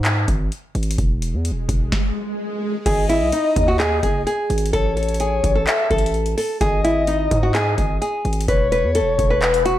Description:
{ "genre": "hip hop, trap", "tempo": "128 BPM", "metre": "4/4", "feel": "half-time", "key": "G# phrygian", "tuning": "A4 = 440 Hz", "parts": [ { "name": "distorted 808-style bass", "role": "bass", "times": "0.0-9.8 s", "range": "E1 to G#2", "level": "-22 LUFS", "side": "equal", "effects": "distortion" }, { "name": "booming analog drum machine", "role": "drums", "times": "0.0-9.8 s", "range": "crash cymbal, handclaps, hi-hat, kick drum, snare drum", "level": "-22 LUFS", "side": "equal", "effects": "none" }, { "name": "swell", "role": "sound effects", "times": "1.5-2.9 s", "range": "none", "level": "-28 LUFS", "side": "right 1 dB", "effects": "none" }, { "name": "nylon-string guitar", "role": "melody", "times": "2.9-9.8 s", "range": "D#4 to B4", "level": "-20 LUFS", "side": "right 1 dB", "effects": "low-pass filter, ping-pong delay" }, { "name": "breathy flute-like synth lead", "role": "second line", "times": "2.9-9.8 s", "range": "B4 to E5", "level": "-23 LUFS", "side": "left 4 dB", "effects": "chorus, ping-pong delay" } ], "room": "light reverb, digital ambience", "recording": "none", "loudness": "-17 LUFS", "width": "side -13 dB against mid", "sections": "0.0-2.9 A section; 2.9-9.8 B section", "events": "break 0.0-2.9; swell 1.5-2.9; stop 1.9-2.9", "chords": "0.0 N.C.; 2.9 G#5; 4.7 A; 6.6 G#5; 8.5 E5" }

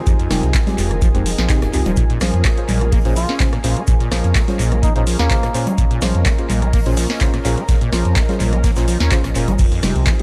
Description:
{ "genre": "acid house", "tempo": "126 BPM", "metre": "4/4", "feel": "straight", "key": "unclear", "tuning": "A4 = 440 Hz", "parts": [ { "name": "lush unison pad", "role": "sustained chords", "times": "0.0-10.2 s", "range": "F3 to Bb4", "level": "-31 LUFS", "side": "equal", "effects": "chorus, sidechain pumping" }, { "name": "ethereal airy pad", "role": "texture", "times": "0.0-10.2 s", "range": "F4 to Ab5", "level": "-32 LUFS", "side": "equal", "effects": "ensemble chorus, built-in reverb, phaser, sidechain pumping" }, { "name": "deep acid bass", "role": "riff", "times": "0.1-10.1 s", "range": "Eb2 to Db4", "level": "-26 LUFS", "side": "equal", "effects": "overdrive, analog chorus, tape echo" }, { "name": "booming analog drum machine", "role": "drums", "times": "0.1-10.2 s", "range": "congas, crash cymbal, handclaps, hi-hat, rim click, snare drum", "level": "-26 LUFS", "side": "equal", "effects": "analog delay" }, { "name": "electronic kick drum", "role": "drums", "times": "0.1-10.2 s", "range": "none", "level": "-19 LUFS", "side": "equal", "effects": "none" }, { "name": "modern studio drum kit", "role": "drums", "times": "0.1-10.2 s", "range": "hi-hat, shaker, snare drum", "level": "-36 LUFS", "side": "equal", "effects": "sidechain pumping on hats, high-pass filter on hats, high-pass filter on snare, sidechain pumping on perc, high-pass filter on perc, high-pass filter on room" }, { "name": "deep mellow chord stab", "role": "stabs", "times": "0.3-10.2 s", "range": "Ab3 to C5", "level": "-29 LUFS", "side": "equal", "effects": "chorus, analog delay" }, { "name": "warm sub bass", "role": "bass", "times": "0.3-10.0 s", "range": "Eb1 to F2", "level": "-22 LUFS", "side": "equal", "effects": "sidechain pumping" }, { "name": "trumpet with cup mute", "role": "melody", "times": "3.2-5.7 s", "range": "Bb3 to F4", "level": "-29 LUFS", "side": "equal", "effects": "analog delay" } ], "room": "small room ambience", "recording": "echo-heavy mix", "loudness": "-17 LUFS", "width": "mono", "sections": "0.0-10.2 A section", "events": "none", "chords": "0.0 Fm7; 2.0 Bbm7; 9.6 Fm7" }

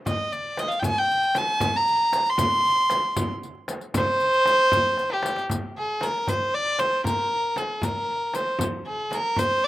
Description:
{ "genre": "Persian modal ensemble", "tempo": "77 BPM (dotted quarters)", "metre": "6/8", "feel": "straight", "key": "unclear", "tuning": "A4 = 439 Hz", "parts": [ { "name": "warm violin", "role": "melody", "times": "0.1-9.7 s", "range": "G4 to C6", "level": "-22 LUFS", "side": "equal", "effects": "none" }, { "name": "frame drum", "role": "percussion", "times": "0.1-9.5 s", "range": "none", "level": "-32 LUFS", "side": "right 1 dB", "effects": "none" }, { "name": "riq", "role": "percussion", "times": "0.1-9.5 s", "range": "none", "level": "-35 LUFS", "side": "left 6 dB", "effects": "none" }, { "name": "tombak", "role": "percussion", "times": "0.1-9.7 s", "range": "none", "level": "-33 LUFS", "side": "left 1 dB", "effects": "none" } ], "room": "little or no reverb", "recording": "recorded outdoors, with no room sound", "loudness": "-21 LUFS", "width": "side -15 dB against mid", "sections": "0.0-5.5 A section; 5.5-9.7 B section", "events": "drum fill 5.0-5.5", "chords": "none" }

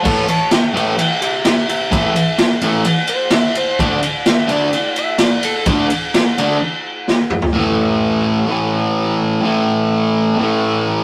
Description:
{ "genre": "garage rock duo or trio", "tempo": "128 BPM", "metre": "4/4", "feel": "straight", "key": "unclear", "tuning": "A4 = 439 Hz", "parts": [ { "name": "electric slide guitar", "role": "melody", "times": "0.0-5.7 s", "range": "G4 to A5", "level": "-24 LUFS", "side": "equal", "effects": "tape echo" }, { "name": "fuzz guitar", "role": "riff", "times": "0.0-11.0 s", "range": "A2 to D4", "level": "-18 LUFS", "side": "equal", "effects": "distortion" }, { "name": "raw garage drum kit", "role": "drums", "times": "0.1-7.5 s", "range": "crash cymbal, kick drum, ride cymbal, snare drum, toms", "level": "-18 LUFS", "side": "equal", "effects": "none" } ], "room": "moderate small room reverb, RT60 0.6 s", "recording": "rough rehearsal-room recording", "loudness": "-16 LUFS", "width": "mono", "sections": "0.0-7.5 A section; 7.5-11.0 B section", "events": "electric slide guitar solo 0.0-7.5; break 6.6-7.5; drum fill 7.1-7.5", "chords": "0.1 A5; 3.8 D5; 7.5 A5" }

